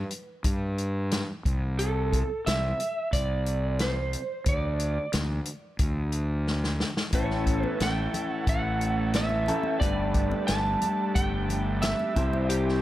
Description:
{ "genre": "psychedelic rock", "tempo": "90 BPM", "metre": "4/4", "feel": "straight", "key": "unclear", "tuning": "A4 = 440 Hz", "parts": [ { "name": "fuzz fingered electric bass", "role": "bass", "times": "0.0-12.8 s", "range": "G1 to G2", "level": "-29 LUFS", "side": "equal", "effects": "overdrive" }, { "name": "vintage drum kit", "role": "drums", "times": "0.1-12.8 s", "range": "hi-hat, kick drum, snare drum", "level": "-29 LUFS", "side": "equal", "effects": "none" }, { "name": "electric slide guitar", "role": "melody", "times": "1.8-12.8 s", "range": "G4 to A5", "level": "-30 LUFS", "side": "right 2 dB", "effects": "slapback echo" }, { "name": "electric guitar through a small old amp", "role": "riff", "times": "7.1-12.8 s", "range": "A2 to C5", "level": "-29 LUFS", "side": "left 1 dB", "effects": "phaser" }, { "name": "combo organ", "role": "sustained chords", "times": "7.2-12.8 s", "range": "E3 to A4", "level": "-38 LUFS", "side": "right 2 dB", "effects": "none" }, { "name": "congas", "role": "percussion", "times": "7.6-12.5 s", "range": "none", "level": "-40 LUFS", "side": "left 3 dB", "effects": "none" } ], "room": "light reverb, studio reverb", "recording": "none", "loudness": "-25 LUFS", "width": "side -14 dB against mid", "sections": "0.0-12.8 A section", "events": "drum fill 6.5-7.1", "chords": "0.0 N.C.; 1.5 C; 4.5 N.C.; 7.1 A; 9.8 Gadd9; 12.2 C", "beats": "0.45 1.12 | 1.79 2.46 3.12 3.79 | 4.46 5.13 5.80 6.47 | 7.14 7.81 8.48 9.15 | 9.82 10.49 11.16 11.83 | 12.51" }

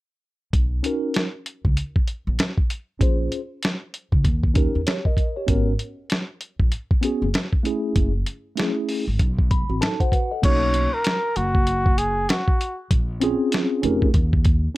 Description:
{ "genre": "hip hop, jazz-hop", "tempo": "97 BPM", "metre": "4/4", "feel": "swing 62% on 16ths", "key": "B major", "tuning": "A4 = 440 Hz", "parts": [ { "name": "upright bass", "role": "bass", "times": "0.5-14.7 s", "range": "E#1 to E2", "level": "-24 LUFS", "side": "equal", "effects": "none" }, { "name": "lo-fi sampler-style drum kit", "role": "drums", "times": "0.5-14.6 s", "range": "crash cymbal, hi-hat, kick drum, snare drum", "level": "-20 LUFS", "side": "equal", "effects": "none" }, { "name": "mellow tine electric piano", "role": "accompaniment", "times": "0.8-14.8 s", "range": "A3 to B5", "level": "-24 LUFS", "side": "equal", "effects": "medium stereo tremolo, plate reverb" }, { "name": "warm flugelhorn", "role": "melody", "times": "10.4-12.8 s", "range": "F#4 to C#5", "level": "-23 LUFS", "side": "equal", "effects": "plate reverb" } ], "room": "light reverb", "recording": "none", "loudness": "-20 LUFS", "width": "side -18 dB against mid", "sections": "0.5-10.4 A section; 10.4-14.8 B section", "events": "tine electric piano fill 9.2-10.4", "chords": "0.5 Bmaj9; 3.0 A#m7; 4.2 D#7; 5.5 G#m11; 8.0 F#m9; 9.2 Am69; 10.4 Bmaj9; 12.9 A#m7; 14.1 N.C.", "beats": "| 0.54 1.15 1.77 2.39 | 3.01 3.63 4.25 4.87 | 5.48 6.10 6.72 7.34 | 7.96 8.58 9.20 9.81 | 10.43 11.05 11.67 12.29 | 12.91 13.53 14.14 14.76" }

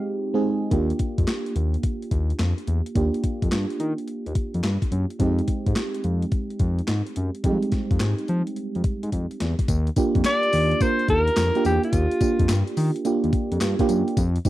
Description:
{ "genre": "R&B, new jack swing", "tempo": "107 BPM", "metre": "4/4", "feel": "swing 66% on 16ths", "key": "unclear", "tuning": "A4 = 440 Hz", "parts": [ { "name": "breathy alto saxophone", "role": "melody", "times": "0.0-0.2, 10.3-12.6 s", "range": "F4 to F5", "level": "-22 LUFS", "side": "left 1 dB", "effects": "none" }, { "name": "mellow FM electric piano", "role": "accompaniment", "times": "0.0-14.5 s", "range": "G3 to Bb4", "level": "-26 LUFS", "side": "right 3 dB", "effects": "chorus" }, { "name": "smooth synth bass", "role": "bass", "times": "0.7-14.4 s", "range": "Eb2 to F3", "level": "-23 LUFS", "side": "left 1 dB", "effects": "none" }, { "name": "gated 80s digital drum machine", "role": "drums", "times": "0.7-14.5 s", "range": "handclaps, hi-hat, kick drum, snare drum, tambourine", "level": "-25 LUFS", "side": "left 1 dB", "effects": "gated reverb, gated reverb snare, overdrive" } ], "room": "little or no reverb", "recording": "dry, close 1970s-style studio recording", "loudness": "-21 LUFS", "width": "side -15 dB against mid", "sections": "0.7-9.7 A section; 9.7-14.5 B section", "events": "break 0.0-0.7; drum fill 9.1-9.7", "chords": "0.0 Fm9; 0.7 Ebmaj9; 5.2 Fm9; 9.7 Ebmaj9", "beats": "0.15 | 0.71 1.27 1.83 2.40 | 2.96 3.52 4.08 4.64 | 5.20 5.76 6.32 6.88 | 7.44 8.00 8.56 9.12 | 9.68 10.24 10.81 11.37 | 11.93 12.49 13.05 13.61 | 14.17" }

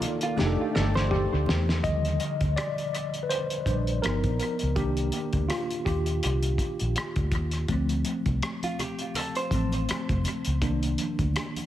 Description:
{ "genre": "R&B, neo-soul", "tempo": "82 BPM", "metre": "4/4", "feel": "swing 56% on 16ths", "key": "unclear", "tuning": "A4 = 440 Hz", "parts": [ { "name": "tine electric piano", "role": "accompaniment", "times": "0.0-11.7 s", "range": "D3 to Eb5", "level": "-29 LUFS", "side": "equal", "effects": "overdrive, fast stereo tremolo, dub echo" }, { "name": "warm analog pad", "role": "sustained chords", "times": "0.0-1.8 s", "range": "Eb3 to D5", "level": "-36 LUFS", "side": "equal", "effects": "chorus" }, { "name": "cloth-damped thuddy drum kit", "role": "drums", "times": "0.0-11.7 s", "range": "hi-hat, kick drum, rim click, snare drum, toms", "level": "-31 LUFS", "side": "equal", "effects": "dub echo" }, { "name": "congas", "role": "percussion", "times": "0.0-1.8, 8.1-11.7 s", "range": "none", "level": "-40 LUFS", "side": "right 1 dB", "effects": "none" }, { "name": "vintage hollow-body jazz guitar", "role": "second line", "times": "0.2-1.8, 8.6-10.4 s", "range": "F4 to C5", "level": "-34 LUFS", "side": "right 2 dB", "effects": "dub echo" }, { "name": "vintage muted fingered electric bass", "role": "bass", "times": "0.4-11.3 s", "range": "F1 to E2", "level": "-27 LUFS", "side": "equal", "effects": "none" } ], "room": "light reverb, small room ambience", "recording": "echo-heavy mix", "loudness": "-25 LUFS", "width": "side -12 dB against mid", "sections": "0.0-1.8 A section; 1.8-11.7 B section", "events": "drum fill 0.4-1.8; tine electric piano solo 1.8-11.7", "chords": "0.4 F13 (rootless); 1.8 Ebmaj7; 4.0 G7alt; 4.8 Cm9; 7.7 Dm7 (rootless); 10.6 Cm9", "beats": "0.37 1.10 | 1.84 2.57 3.30 4.03 | 4.76 5.50 6.23 6.96 | 7.69 8.42 9.15 9.88 | 10.62 11.35" }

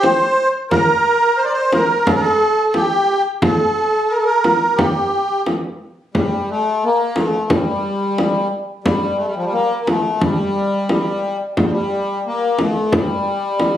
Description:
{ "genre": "Arabic maqam ensemble", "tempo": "88 BPM", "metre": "4/4", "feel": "straight", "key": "G maqam bayati", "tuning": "A4 = 445 Hz", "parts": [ { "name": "musette accordion", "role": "melody", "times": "0.0-13.8 s", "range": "F3 to D5", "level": "-16 LUFS", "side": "equal", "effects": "none" }, { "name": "frame drum", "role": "percussion", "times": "0.0-13.8 s", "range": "none", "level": "-18 LUFS", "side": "equal", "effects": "none" } ], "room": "wet studio reverb, RT60 0.6 s", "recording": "recorded on a phone in the room, studio reverb", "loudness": "-15 LUFS", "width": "side -11 dB against mid", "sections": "0.0-6.1 A section; 6.1-13.8 B section", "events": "none", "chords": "none", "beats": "0.03 | 0.71 1.39 2.07 2.75 | 3.43 4.11 4.79 5.46 | 6.14 6.82 7.50 8.18 | 8.86 9.54 10.21 10.89 | 11.57 12.25 12.92 13.60" }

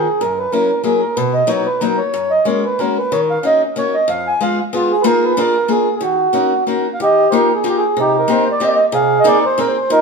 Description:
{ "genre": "musette", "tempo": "186 BPM", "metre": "3/4", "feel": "swing 55% on 8ths", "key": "Eb minor, Eb major from 7.0 s", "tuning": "A4 = 444 Hz", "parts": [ { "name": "mellow accordion", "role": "melody", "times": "0.0-10.0 s", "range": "Eb4 to Ab5", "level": "-14 LUFS", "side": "right 2 dB", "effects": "none" }, { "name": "picked acoustic archtop guitar", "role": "accompaniment", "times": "0.0-10.0 s", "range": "F2 to Ab4", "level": "-18 LUFS", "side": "left 4 dB", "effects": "none" } ], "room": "wet large studio reverb, RT60 1.2 s", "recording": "band playing live in one room", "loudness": "-13 LUFS", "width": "side -4 dB against mid", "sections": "0.0-7.0 A section; 7.0-10.0 B section", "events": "none", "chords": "0.2 Gb7; 1.2 Bmaj7; 2.1 Gbadd9; 3.1 Ebm7; 4.1 Fdim; 5.1 Bb7sus4; 5.4 Bb7; 6.0 Ebm7; 7.0 Ebadd9; 8.0 Cm7; 8.9 Abadd9/C", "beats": "| 0.21 0.53 0.85 | 1.17 1.49 1.81 | 2.13 2.46 2.79 | 3.12 3.44 3.77 | 4.09 4.42 4.74 | 5.06 5.38 5.70 | 6.03 6.35 6.68 | 7.01 7.34 7.66 | 7.98 8.30 8.62 | 8.94 9.26 9.58 | 9.91" }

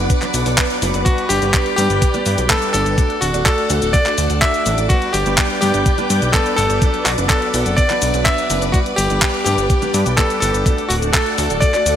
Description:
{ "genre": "italo disco", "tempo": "125 BPM", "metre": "4/4", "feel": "straight", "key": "unclear", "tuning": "A4 = 440 Hz", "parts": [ { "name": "bright electric grand piano", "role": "melody", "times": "0.0-12.0 s", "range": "F#4 to E5", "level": "-19 LUFS", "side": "left 1 dB", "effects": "ping-pong delay" }, { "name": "string machine, full ensemble", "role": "sustained chords", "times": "0.0-12.0 s", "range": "A4 to D6", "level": "-23 LUFS", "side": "equal", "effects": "ensemble chorus" }, { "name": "warm concert grand piano", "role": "stabs", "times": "0.0-12.0 s", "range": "F#3 to D5", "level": "-24 LUFS", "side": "right 1 dB", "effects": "wide subtle chorus" }, { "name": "fat analog bass", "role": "bass", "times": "0.0-12.0 s", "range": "D1 to G2", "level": "-20 LUFS", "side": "equal", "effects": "none" }, { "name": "clean 12-bit digital drum machine", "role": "drums", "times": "0.1-12.0 s", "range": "cabasa, handclaps, hi-hat", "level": "-21 LUFS", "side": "left 1 dB", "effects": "none" }, { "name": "electronic kick drum", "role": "drums", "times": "0.1-11.7 s", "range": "none", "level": "-17 LUFS", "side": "equal", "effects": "none" } ], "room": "light reverb", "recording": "bright 1980s-style digital production", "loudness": "-14 LUFS", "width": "side -10 dB against mid", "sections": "0.0-12.0 A section", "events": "none", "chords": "0.0 Bm; 1.1 G; 3.0 D; 4.9 G; 6.8 Bm; 8.7 G; 10.7 D", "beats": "0.10 0.58 | 1.06 1.54 2.02 2.50 | 2.98 3.46 3.94 4.42 | 4.90 5.38 5.86 6.34 | 6.82 7.30 7.78 8.26 | 8.74 9.22 9.70 10.18 | 10.66 11.14 11.62" }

